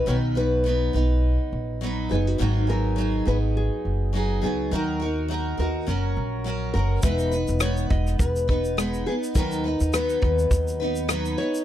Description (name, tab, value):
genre	acoustic pop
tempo	103 BPM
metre	4/4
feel	swing 55% on 16ths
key	B major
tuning	A4 = 441 Hz
part	nylon-string guitar	melody	0.0-11.6 s	F#4 to D#5	-29 LUFS	left 2 dB	none
part	picked steel-string acoustic guitar	accompaniment	0.0-11.6 s	G#2 to B4	-26 LUFS	right 1 dB	double-tracked left and right
part	upright bass	bass	0.0-11.3 s	E1 to D#2	-25 LUFS	equal	none
part	natural country drum kit	drums	7.0-11.6 s	kick drum, rim click, shaker	-25 LUFS	equal	none
room	little or no reverb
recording	dry, close 1970s-style studio recording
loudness	-21 LUFS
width	side -12 dB against mid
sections	0.0-7.0 A section; 7.0-11.6 B section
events	none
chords	0.0 B; 2.4 G#m7; 4.7 D#m; 5.9 F#; 7.0 Emaj7; 9.4 B/D#